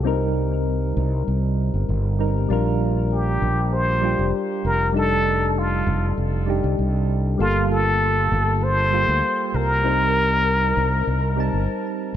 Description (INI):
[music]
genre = sunset chillout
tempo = 98 BPM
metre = 4/4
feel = straight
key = unclear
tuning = A4 = 439 Hz
[part]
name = soft electric-piano-like synth keys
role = accompaniment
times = 0.0-12.2 s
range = G3 to A5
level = -24 LUFS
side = equal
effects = chorus, auto-pan, vintage 12-bit sampler grit, low-pass filter, ping-pong delay
[part]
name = fretless electric bass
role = bass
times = 0.0-12.2 s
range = F1 to D2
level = -22 LUFS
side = equal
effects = none
[part]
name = trumpet with plunger mute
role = melody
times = 3.1-11.7 s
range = F4 to C5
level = -22 LUFS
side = left 1 dB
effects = ping-pong delay
[sound]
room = light reverb, small room ambience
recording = none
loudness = -18 LUFS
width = side -10 dB against mid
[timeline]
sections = 0.0-12.2 A section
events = none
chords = 0.1 Cm7; 2.5 Bb6; 4.9 F13; 7.4 Gm9; 9.8 Cm7